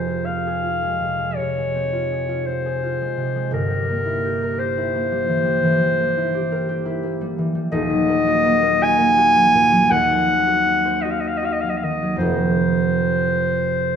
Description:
classical, romantic duo for clarinet and harp; 50-59 BPM (dotted quarters); 12/8; rubato; A4 = 440 Hz
clear clarinet; melody; 0.0-14.0 s; Bb4 to Ab5; -19 LUFS; left 1 dB
concert harp; accompaniment; 0.0-14.0 s; Eb1 to C5; -21 LUFS; right 1 dB
wet recital hall reverb, RT60 1.5 s; -17 LUFS; side -8 dB against mid
0.0-14.0 A section
0.0 Fm; 3.5 C7/G; 7.7 Ebm; 9.9 Cdim/Eb; 12.2 F

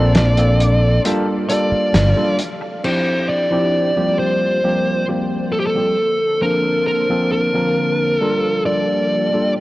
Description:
vaporwave; 67 BPM; 4/4; straight; A4 = 440 Hz
fuzz lead guitar; melody; 0.0-9.5 s; G4 to D5; -18 LUFS; equal; distortion, tape echo
tine electric piano; accompaniment; 0.0-9.5 s; F3 to Bb4; -20 LUFS; equal; overdrive, lush chorus
soft string machine; sustained chords; 0.0-9.6 s; D3 to C6; -28 LUFS; equal; ensemble chorus
semi-hollow electric guitar; riff; 0.0-2.6 s; Bb3 to A4; -28 LUFS; equal; wide subtle chorus
fretless electric bass; bass; 0.0-2.1 s; G1 to Bb1; -14 LUFS; equal; analog chorus
warm soul drum kit; drums; 0.1-3.0 s; crash cymbal, hi-hat, snare drum; -22 LUFS; equal
moderate lush hall reverb, RT60 3.3 s; worn, warbling old tape, cassette tape, warbly pitch drift; -15 LUFS; side -18 dB against mid
0.0-2.8 A section; 2.8-9.6 B section
band accent 1.9-2.4
0.0 Bbmaj9; 1.0 Gm9; 2.8 Dm11; 4.2 C7sus4; 6.0 Bbmaj9; 8.2 Gm9

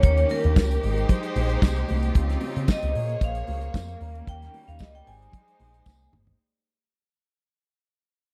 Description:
disco; 113 BPM; 4/4; straight; Ab major; A4 = 438 Hz
vibraphone with medium hard mallets; melody; 0.0-6.1 s; Bb4 to Ab5; -31 LUFS; equal
rich studio string section; sustained chords; 0.0-6.4 s; Db3 to Db5; -35 LUFS; equal
picked electric bass with an envelope filter; bass; 0.0-6.3 s; G1 to Db3; -28 LUFS; equal
damped 70s drum kit; drums; 0.0-6.4 s; hi-hat, kick drum, snare drum, toms; -22 LUFS; equal
congas; percussion; 0.3-6.3 s; -38 LUFS; equal
tambourine; percussion; 0.6-6.0 s; -48 LUFS; equal
little or no reverb; dry, close 1970s-style studio recording; -24 LUFS; mono
0.0-6.4 A section
fade-out 0.0-6.4; drum fill 5.9-6.4
0.0 Eb7; 0.8 Abmaj7; 2.2 Dbmaj9#11; 2.9 Bbm9; 4.0 Eb7; 5.1 Abmaj7

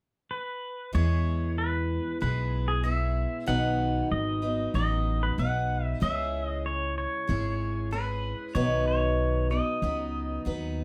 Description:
country; 95 BPM; 4/4; straight; E major; A4 = 441 Hz
pedal steel guitar; melody; 0.3-10.4 s; G#4 to F#5; -34 LUFS; equal
picked steel-string acoustic guitar; accompaniment; 0.9-10.8 s; B2 to B4; -34 LUFS; equal
upright bass; bass; 0.9-10.8 s; G#1 to E2; -31 LUFS; equal
light reverb; -28 LUFS; mono
0.9-10.8 A section
0.0 N.C.; 0.9 E; 3.5 B; 6.0 C#m; 8.6 B

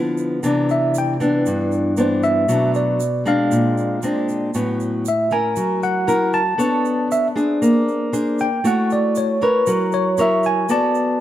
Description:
bossa nova; 117 BPM; 4/4; straight; A4 = 441 Hz
nylon-string guitar; accompaniment; 0.0-11.2 s; G2 to D5; -18 LUFS; left 1 dB
egg shaker; percussion; 0.2-11.2 s; -37 LUFS; right 8 dB
tine electric piano; melody; 0.7-11.2 s; A#4 to A5; -20 LUFS; right 1 dB; medium stereo tremolo
moderate echo chamber reverb, RT60 2.0 s; -16 LUFS; side -12 dB against mid
0.0-11.2 A section
tine electric piano solo 0.0-11.2
0.4 Cmaj9; 2.5 Bm7; 3.5 Bb9; 4.5 A69; 5.6 F#7; 6.6 Bm9; 7.6 Bb9; 8.6 A6; 9.7 F#7; 10.7 Bm7

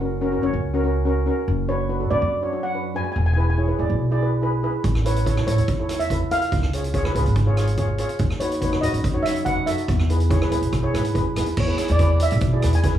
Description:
calypso; 143 BPM; 4/4; straight; A4 = 440 Hz
steel pan; melody; 0.0-13.0 s; B4 to G#5; -26 LUFS; right 1 dB; plate reverb
steel pan; accompaniment; 0.0-13.0 s; C#4 to E5; -25 LUFS; equal
upright bass; bass; 0.0-13.0 s; E1 to G#2; -22 LUFS; equal
street-band drum kit; drums; 4.8-12.9 s; crash cymbal, hi-hat, kick drum, rim click; -25 LUFS; right 2 dB
moderate studio ambience, RT60 0.5 s; small room reverb; -19 LUFS; side -11 dB against mid
0.0-11.6 A section; 11.6-13.0 B section
0.0 F#; 1.5 Bm/F#; 3.2 E; 4.8 A; 6.5 C#7; 8.2 B7/D#; 9.9 E

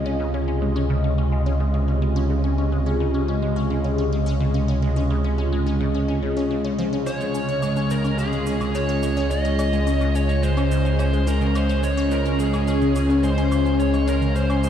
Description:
ambient, sequencer-driven space music; 107 BPM; 4/4; straight; Db major; A4 = 440 Hz
phased analog pad; sustained chords; 0.0-14.7 s; C3 to Eb5; -23 LUFS; equal; phaser, chorus
resonant blip pluck; riff; 0.0-14.7 s; Db3 to Db4; -29 LUFS; left 2 dB; phaser, tape echo
fat analog bass; bass; 0.0-14.7 s; Db2; -23 LUFS; equal
bluesy overdriven lead guitar; melody; 7.1-14.7 s; Ab4 to Eb5; -26 LUFS; equal; distortion, tape echo
cabasa and woodblock; percussion; 7.1-14.7 s; -40 LUFS; equal; tape echo
wet huge ambient reverb, RT60 8.3 s; played on a big sound system in a bare room, stone room reverb; -19 LUFS; side -9 dB against mid
0.0-14.7 A section
0.0 Dbmaj7

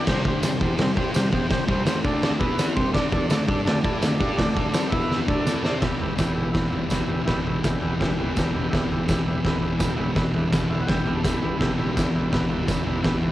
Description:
garage rock duo or trio; 167 BPM; 4/4; straight; E minor; A4 = 440 Hz
combo organ; sustained chords; 0.0-13.3 s; B3 to B5; -30 LUFS; right 1 dB
thick fuzz guitar; riff; 0.0-13.3 s; E2 to C5; -25 LUFS; equal; distortion
oversized low-tuned drum kit; drums; 0.1-13.3 s; crash cymbal, hi-hat, kick drum, snare drum, toms; -24 LUFS; equal; cassette tape
tambourine; percussion; 0.4-12.8 s; -38 LUFS; right 4 dB
moderate spring reverb, RT60 1.7 s, studio reverb; home recording on cassette; -21 LUFS; side -14 dB against mid
0.0-5.8 A section; 5.8-13.3 B section
drum fill 5.1-5.8; transistor combo organ fill 10.5-11.6
0.1 C5; 2.0 D5; 2.4 E5; 2.8 C5; 2.9 D5; 4.9 E5; 5.3 D5; 5.8 Em

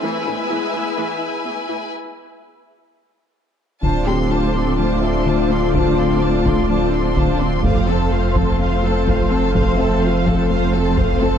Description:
cinematic, hybrid orchestral and electronic film score; 126 BPM; 4/4; straight; A4 = 440 Hz
warm studio violin section; second line; 0.0-11.4 s; A4 to C6; -25 LUFS; left 3 dB
warm symphonic viola section; accompaniment; 0.0-11.4 s; D3 to A4; -24 LUFS; right 3 dB
analog string pad; sustained chords; 0.0-11.4 s; G#3 to E5; -25 LUFS; equal; ensemble chorus
soft round pluck; arpeggios; 0.0-11.4 s; D3 to E4; -27 LUFS; left 4 dB; chorus, ping-pong delay
rich symphonic cello section; bass; 0.0-11.4 s; D2 to A2; -23 LUFS; right 3 dB
dark baby grand piano; texture; 0.0-0.1, 4.1-11.4 s; G4 to G5; -33 LUFS; left 3 dB
mellow French horn section; sustained chords; 3.8-11.3 s; C4 to A4; -23 LUFS; left 7 dB
warm sub bass; bass; 3.8-11.4 s; D1 to F1; -22 LUFS; equal
taiko ensemble; drums; 3.8-11.4 s; -24 LUFS; equal
moderate scoring stage reverb, RT60 2.1 s; dark, warm production, high-pass filter; -16 LUFS; side -8 dB against mid
0.0-3.8 A section; 3.8-11.4 B section
build-up 0.0-3.8; filter sweep 0.0-3.8; break 1.9-3.8
0.0 E/A; 3.8 Dm7; 7.6 F

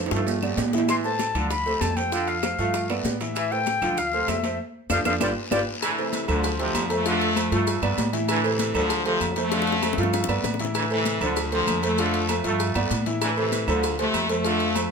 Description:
latin, salsa; 195 BPM; 4/4; straight; A minor; A4 = 440 Hz
clear baby grand piano; accompaniment; 0.0-14.9 s; E3 to F5; -28 LUFS; right 2 dB
upright bass; bass; 0.0-14.9 s; G1 to A2; -29 LUFS; right 1 dB
brilliant trombone section; second line; 0.1-14.7 s; C3 to A3; -31 LUFS; right 3 dB
bongos and cowbell; percussion; 0.1-14.9 s; -33 LUFS; left 8 dB
guiro; percussion; 0.1-14.9 s; -38 LUFS; left 5 dB
maracas; percussion; 0.1-14.9 s; -38 LUFS; right 6 dB
timbales and agogo bells; percussion; 0.1-14.9 s; -32 LUFS; right 4 dB
congas; percussion; 0.3-14.9 s; -34 LUFS; left 4 dB
claves; percussion; 0.4-14.9 s; -38 LUFS; right 6 dB
bright silver concert flute; melody; 0.9-5.6 s; D5 to C6; -26 LUFS; left 4 dB
brilliant trombone section; melody; 5.8-14.9 s; A2 to A3; -26 LUFS; left 2 dB
moderate studio reverb, RT60 0.9 s; -21 LUFS; side -5 dB against mid
0.0-5.8 A section; 5.8-14.9 B section
drum fill 0.0-0.9, 4.9-5.8, 9.5-10.8; band accent 4.6-5.8
0.3 G7; 0.9 Am; 1.5 Dm7; 2.1 F6; 2.7 G7; 3.4 Am; 4.0 Dm7; 4.6 F6; 5.2 G7; 5.8 Am; 6.4 Dm7; 7.1 F6; 7.7 G7; 8.3 Am; 8.9 Dm7; 9.5 F6; 10.1 G7; 10.8 Am; 11.4 Dm7; 12.0 F6; 12.6 G7; 13.2 Am; 13.8 Dm7

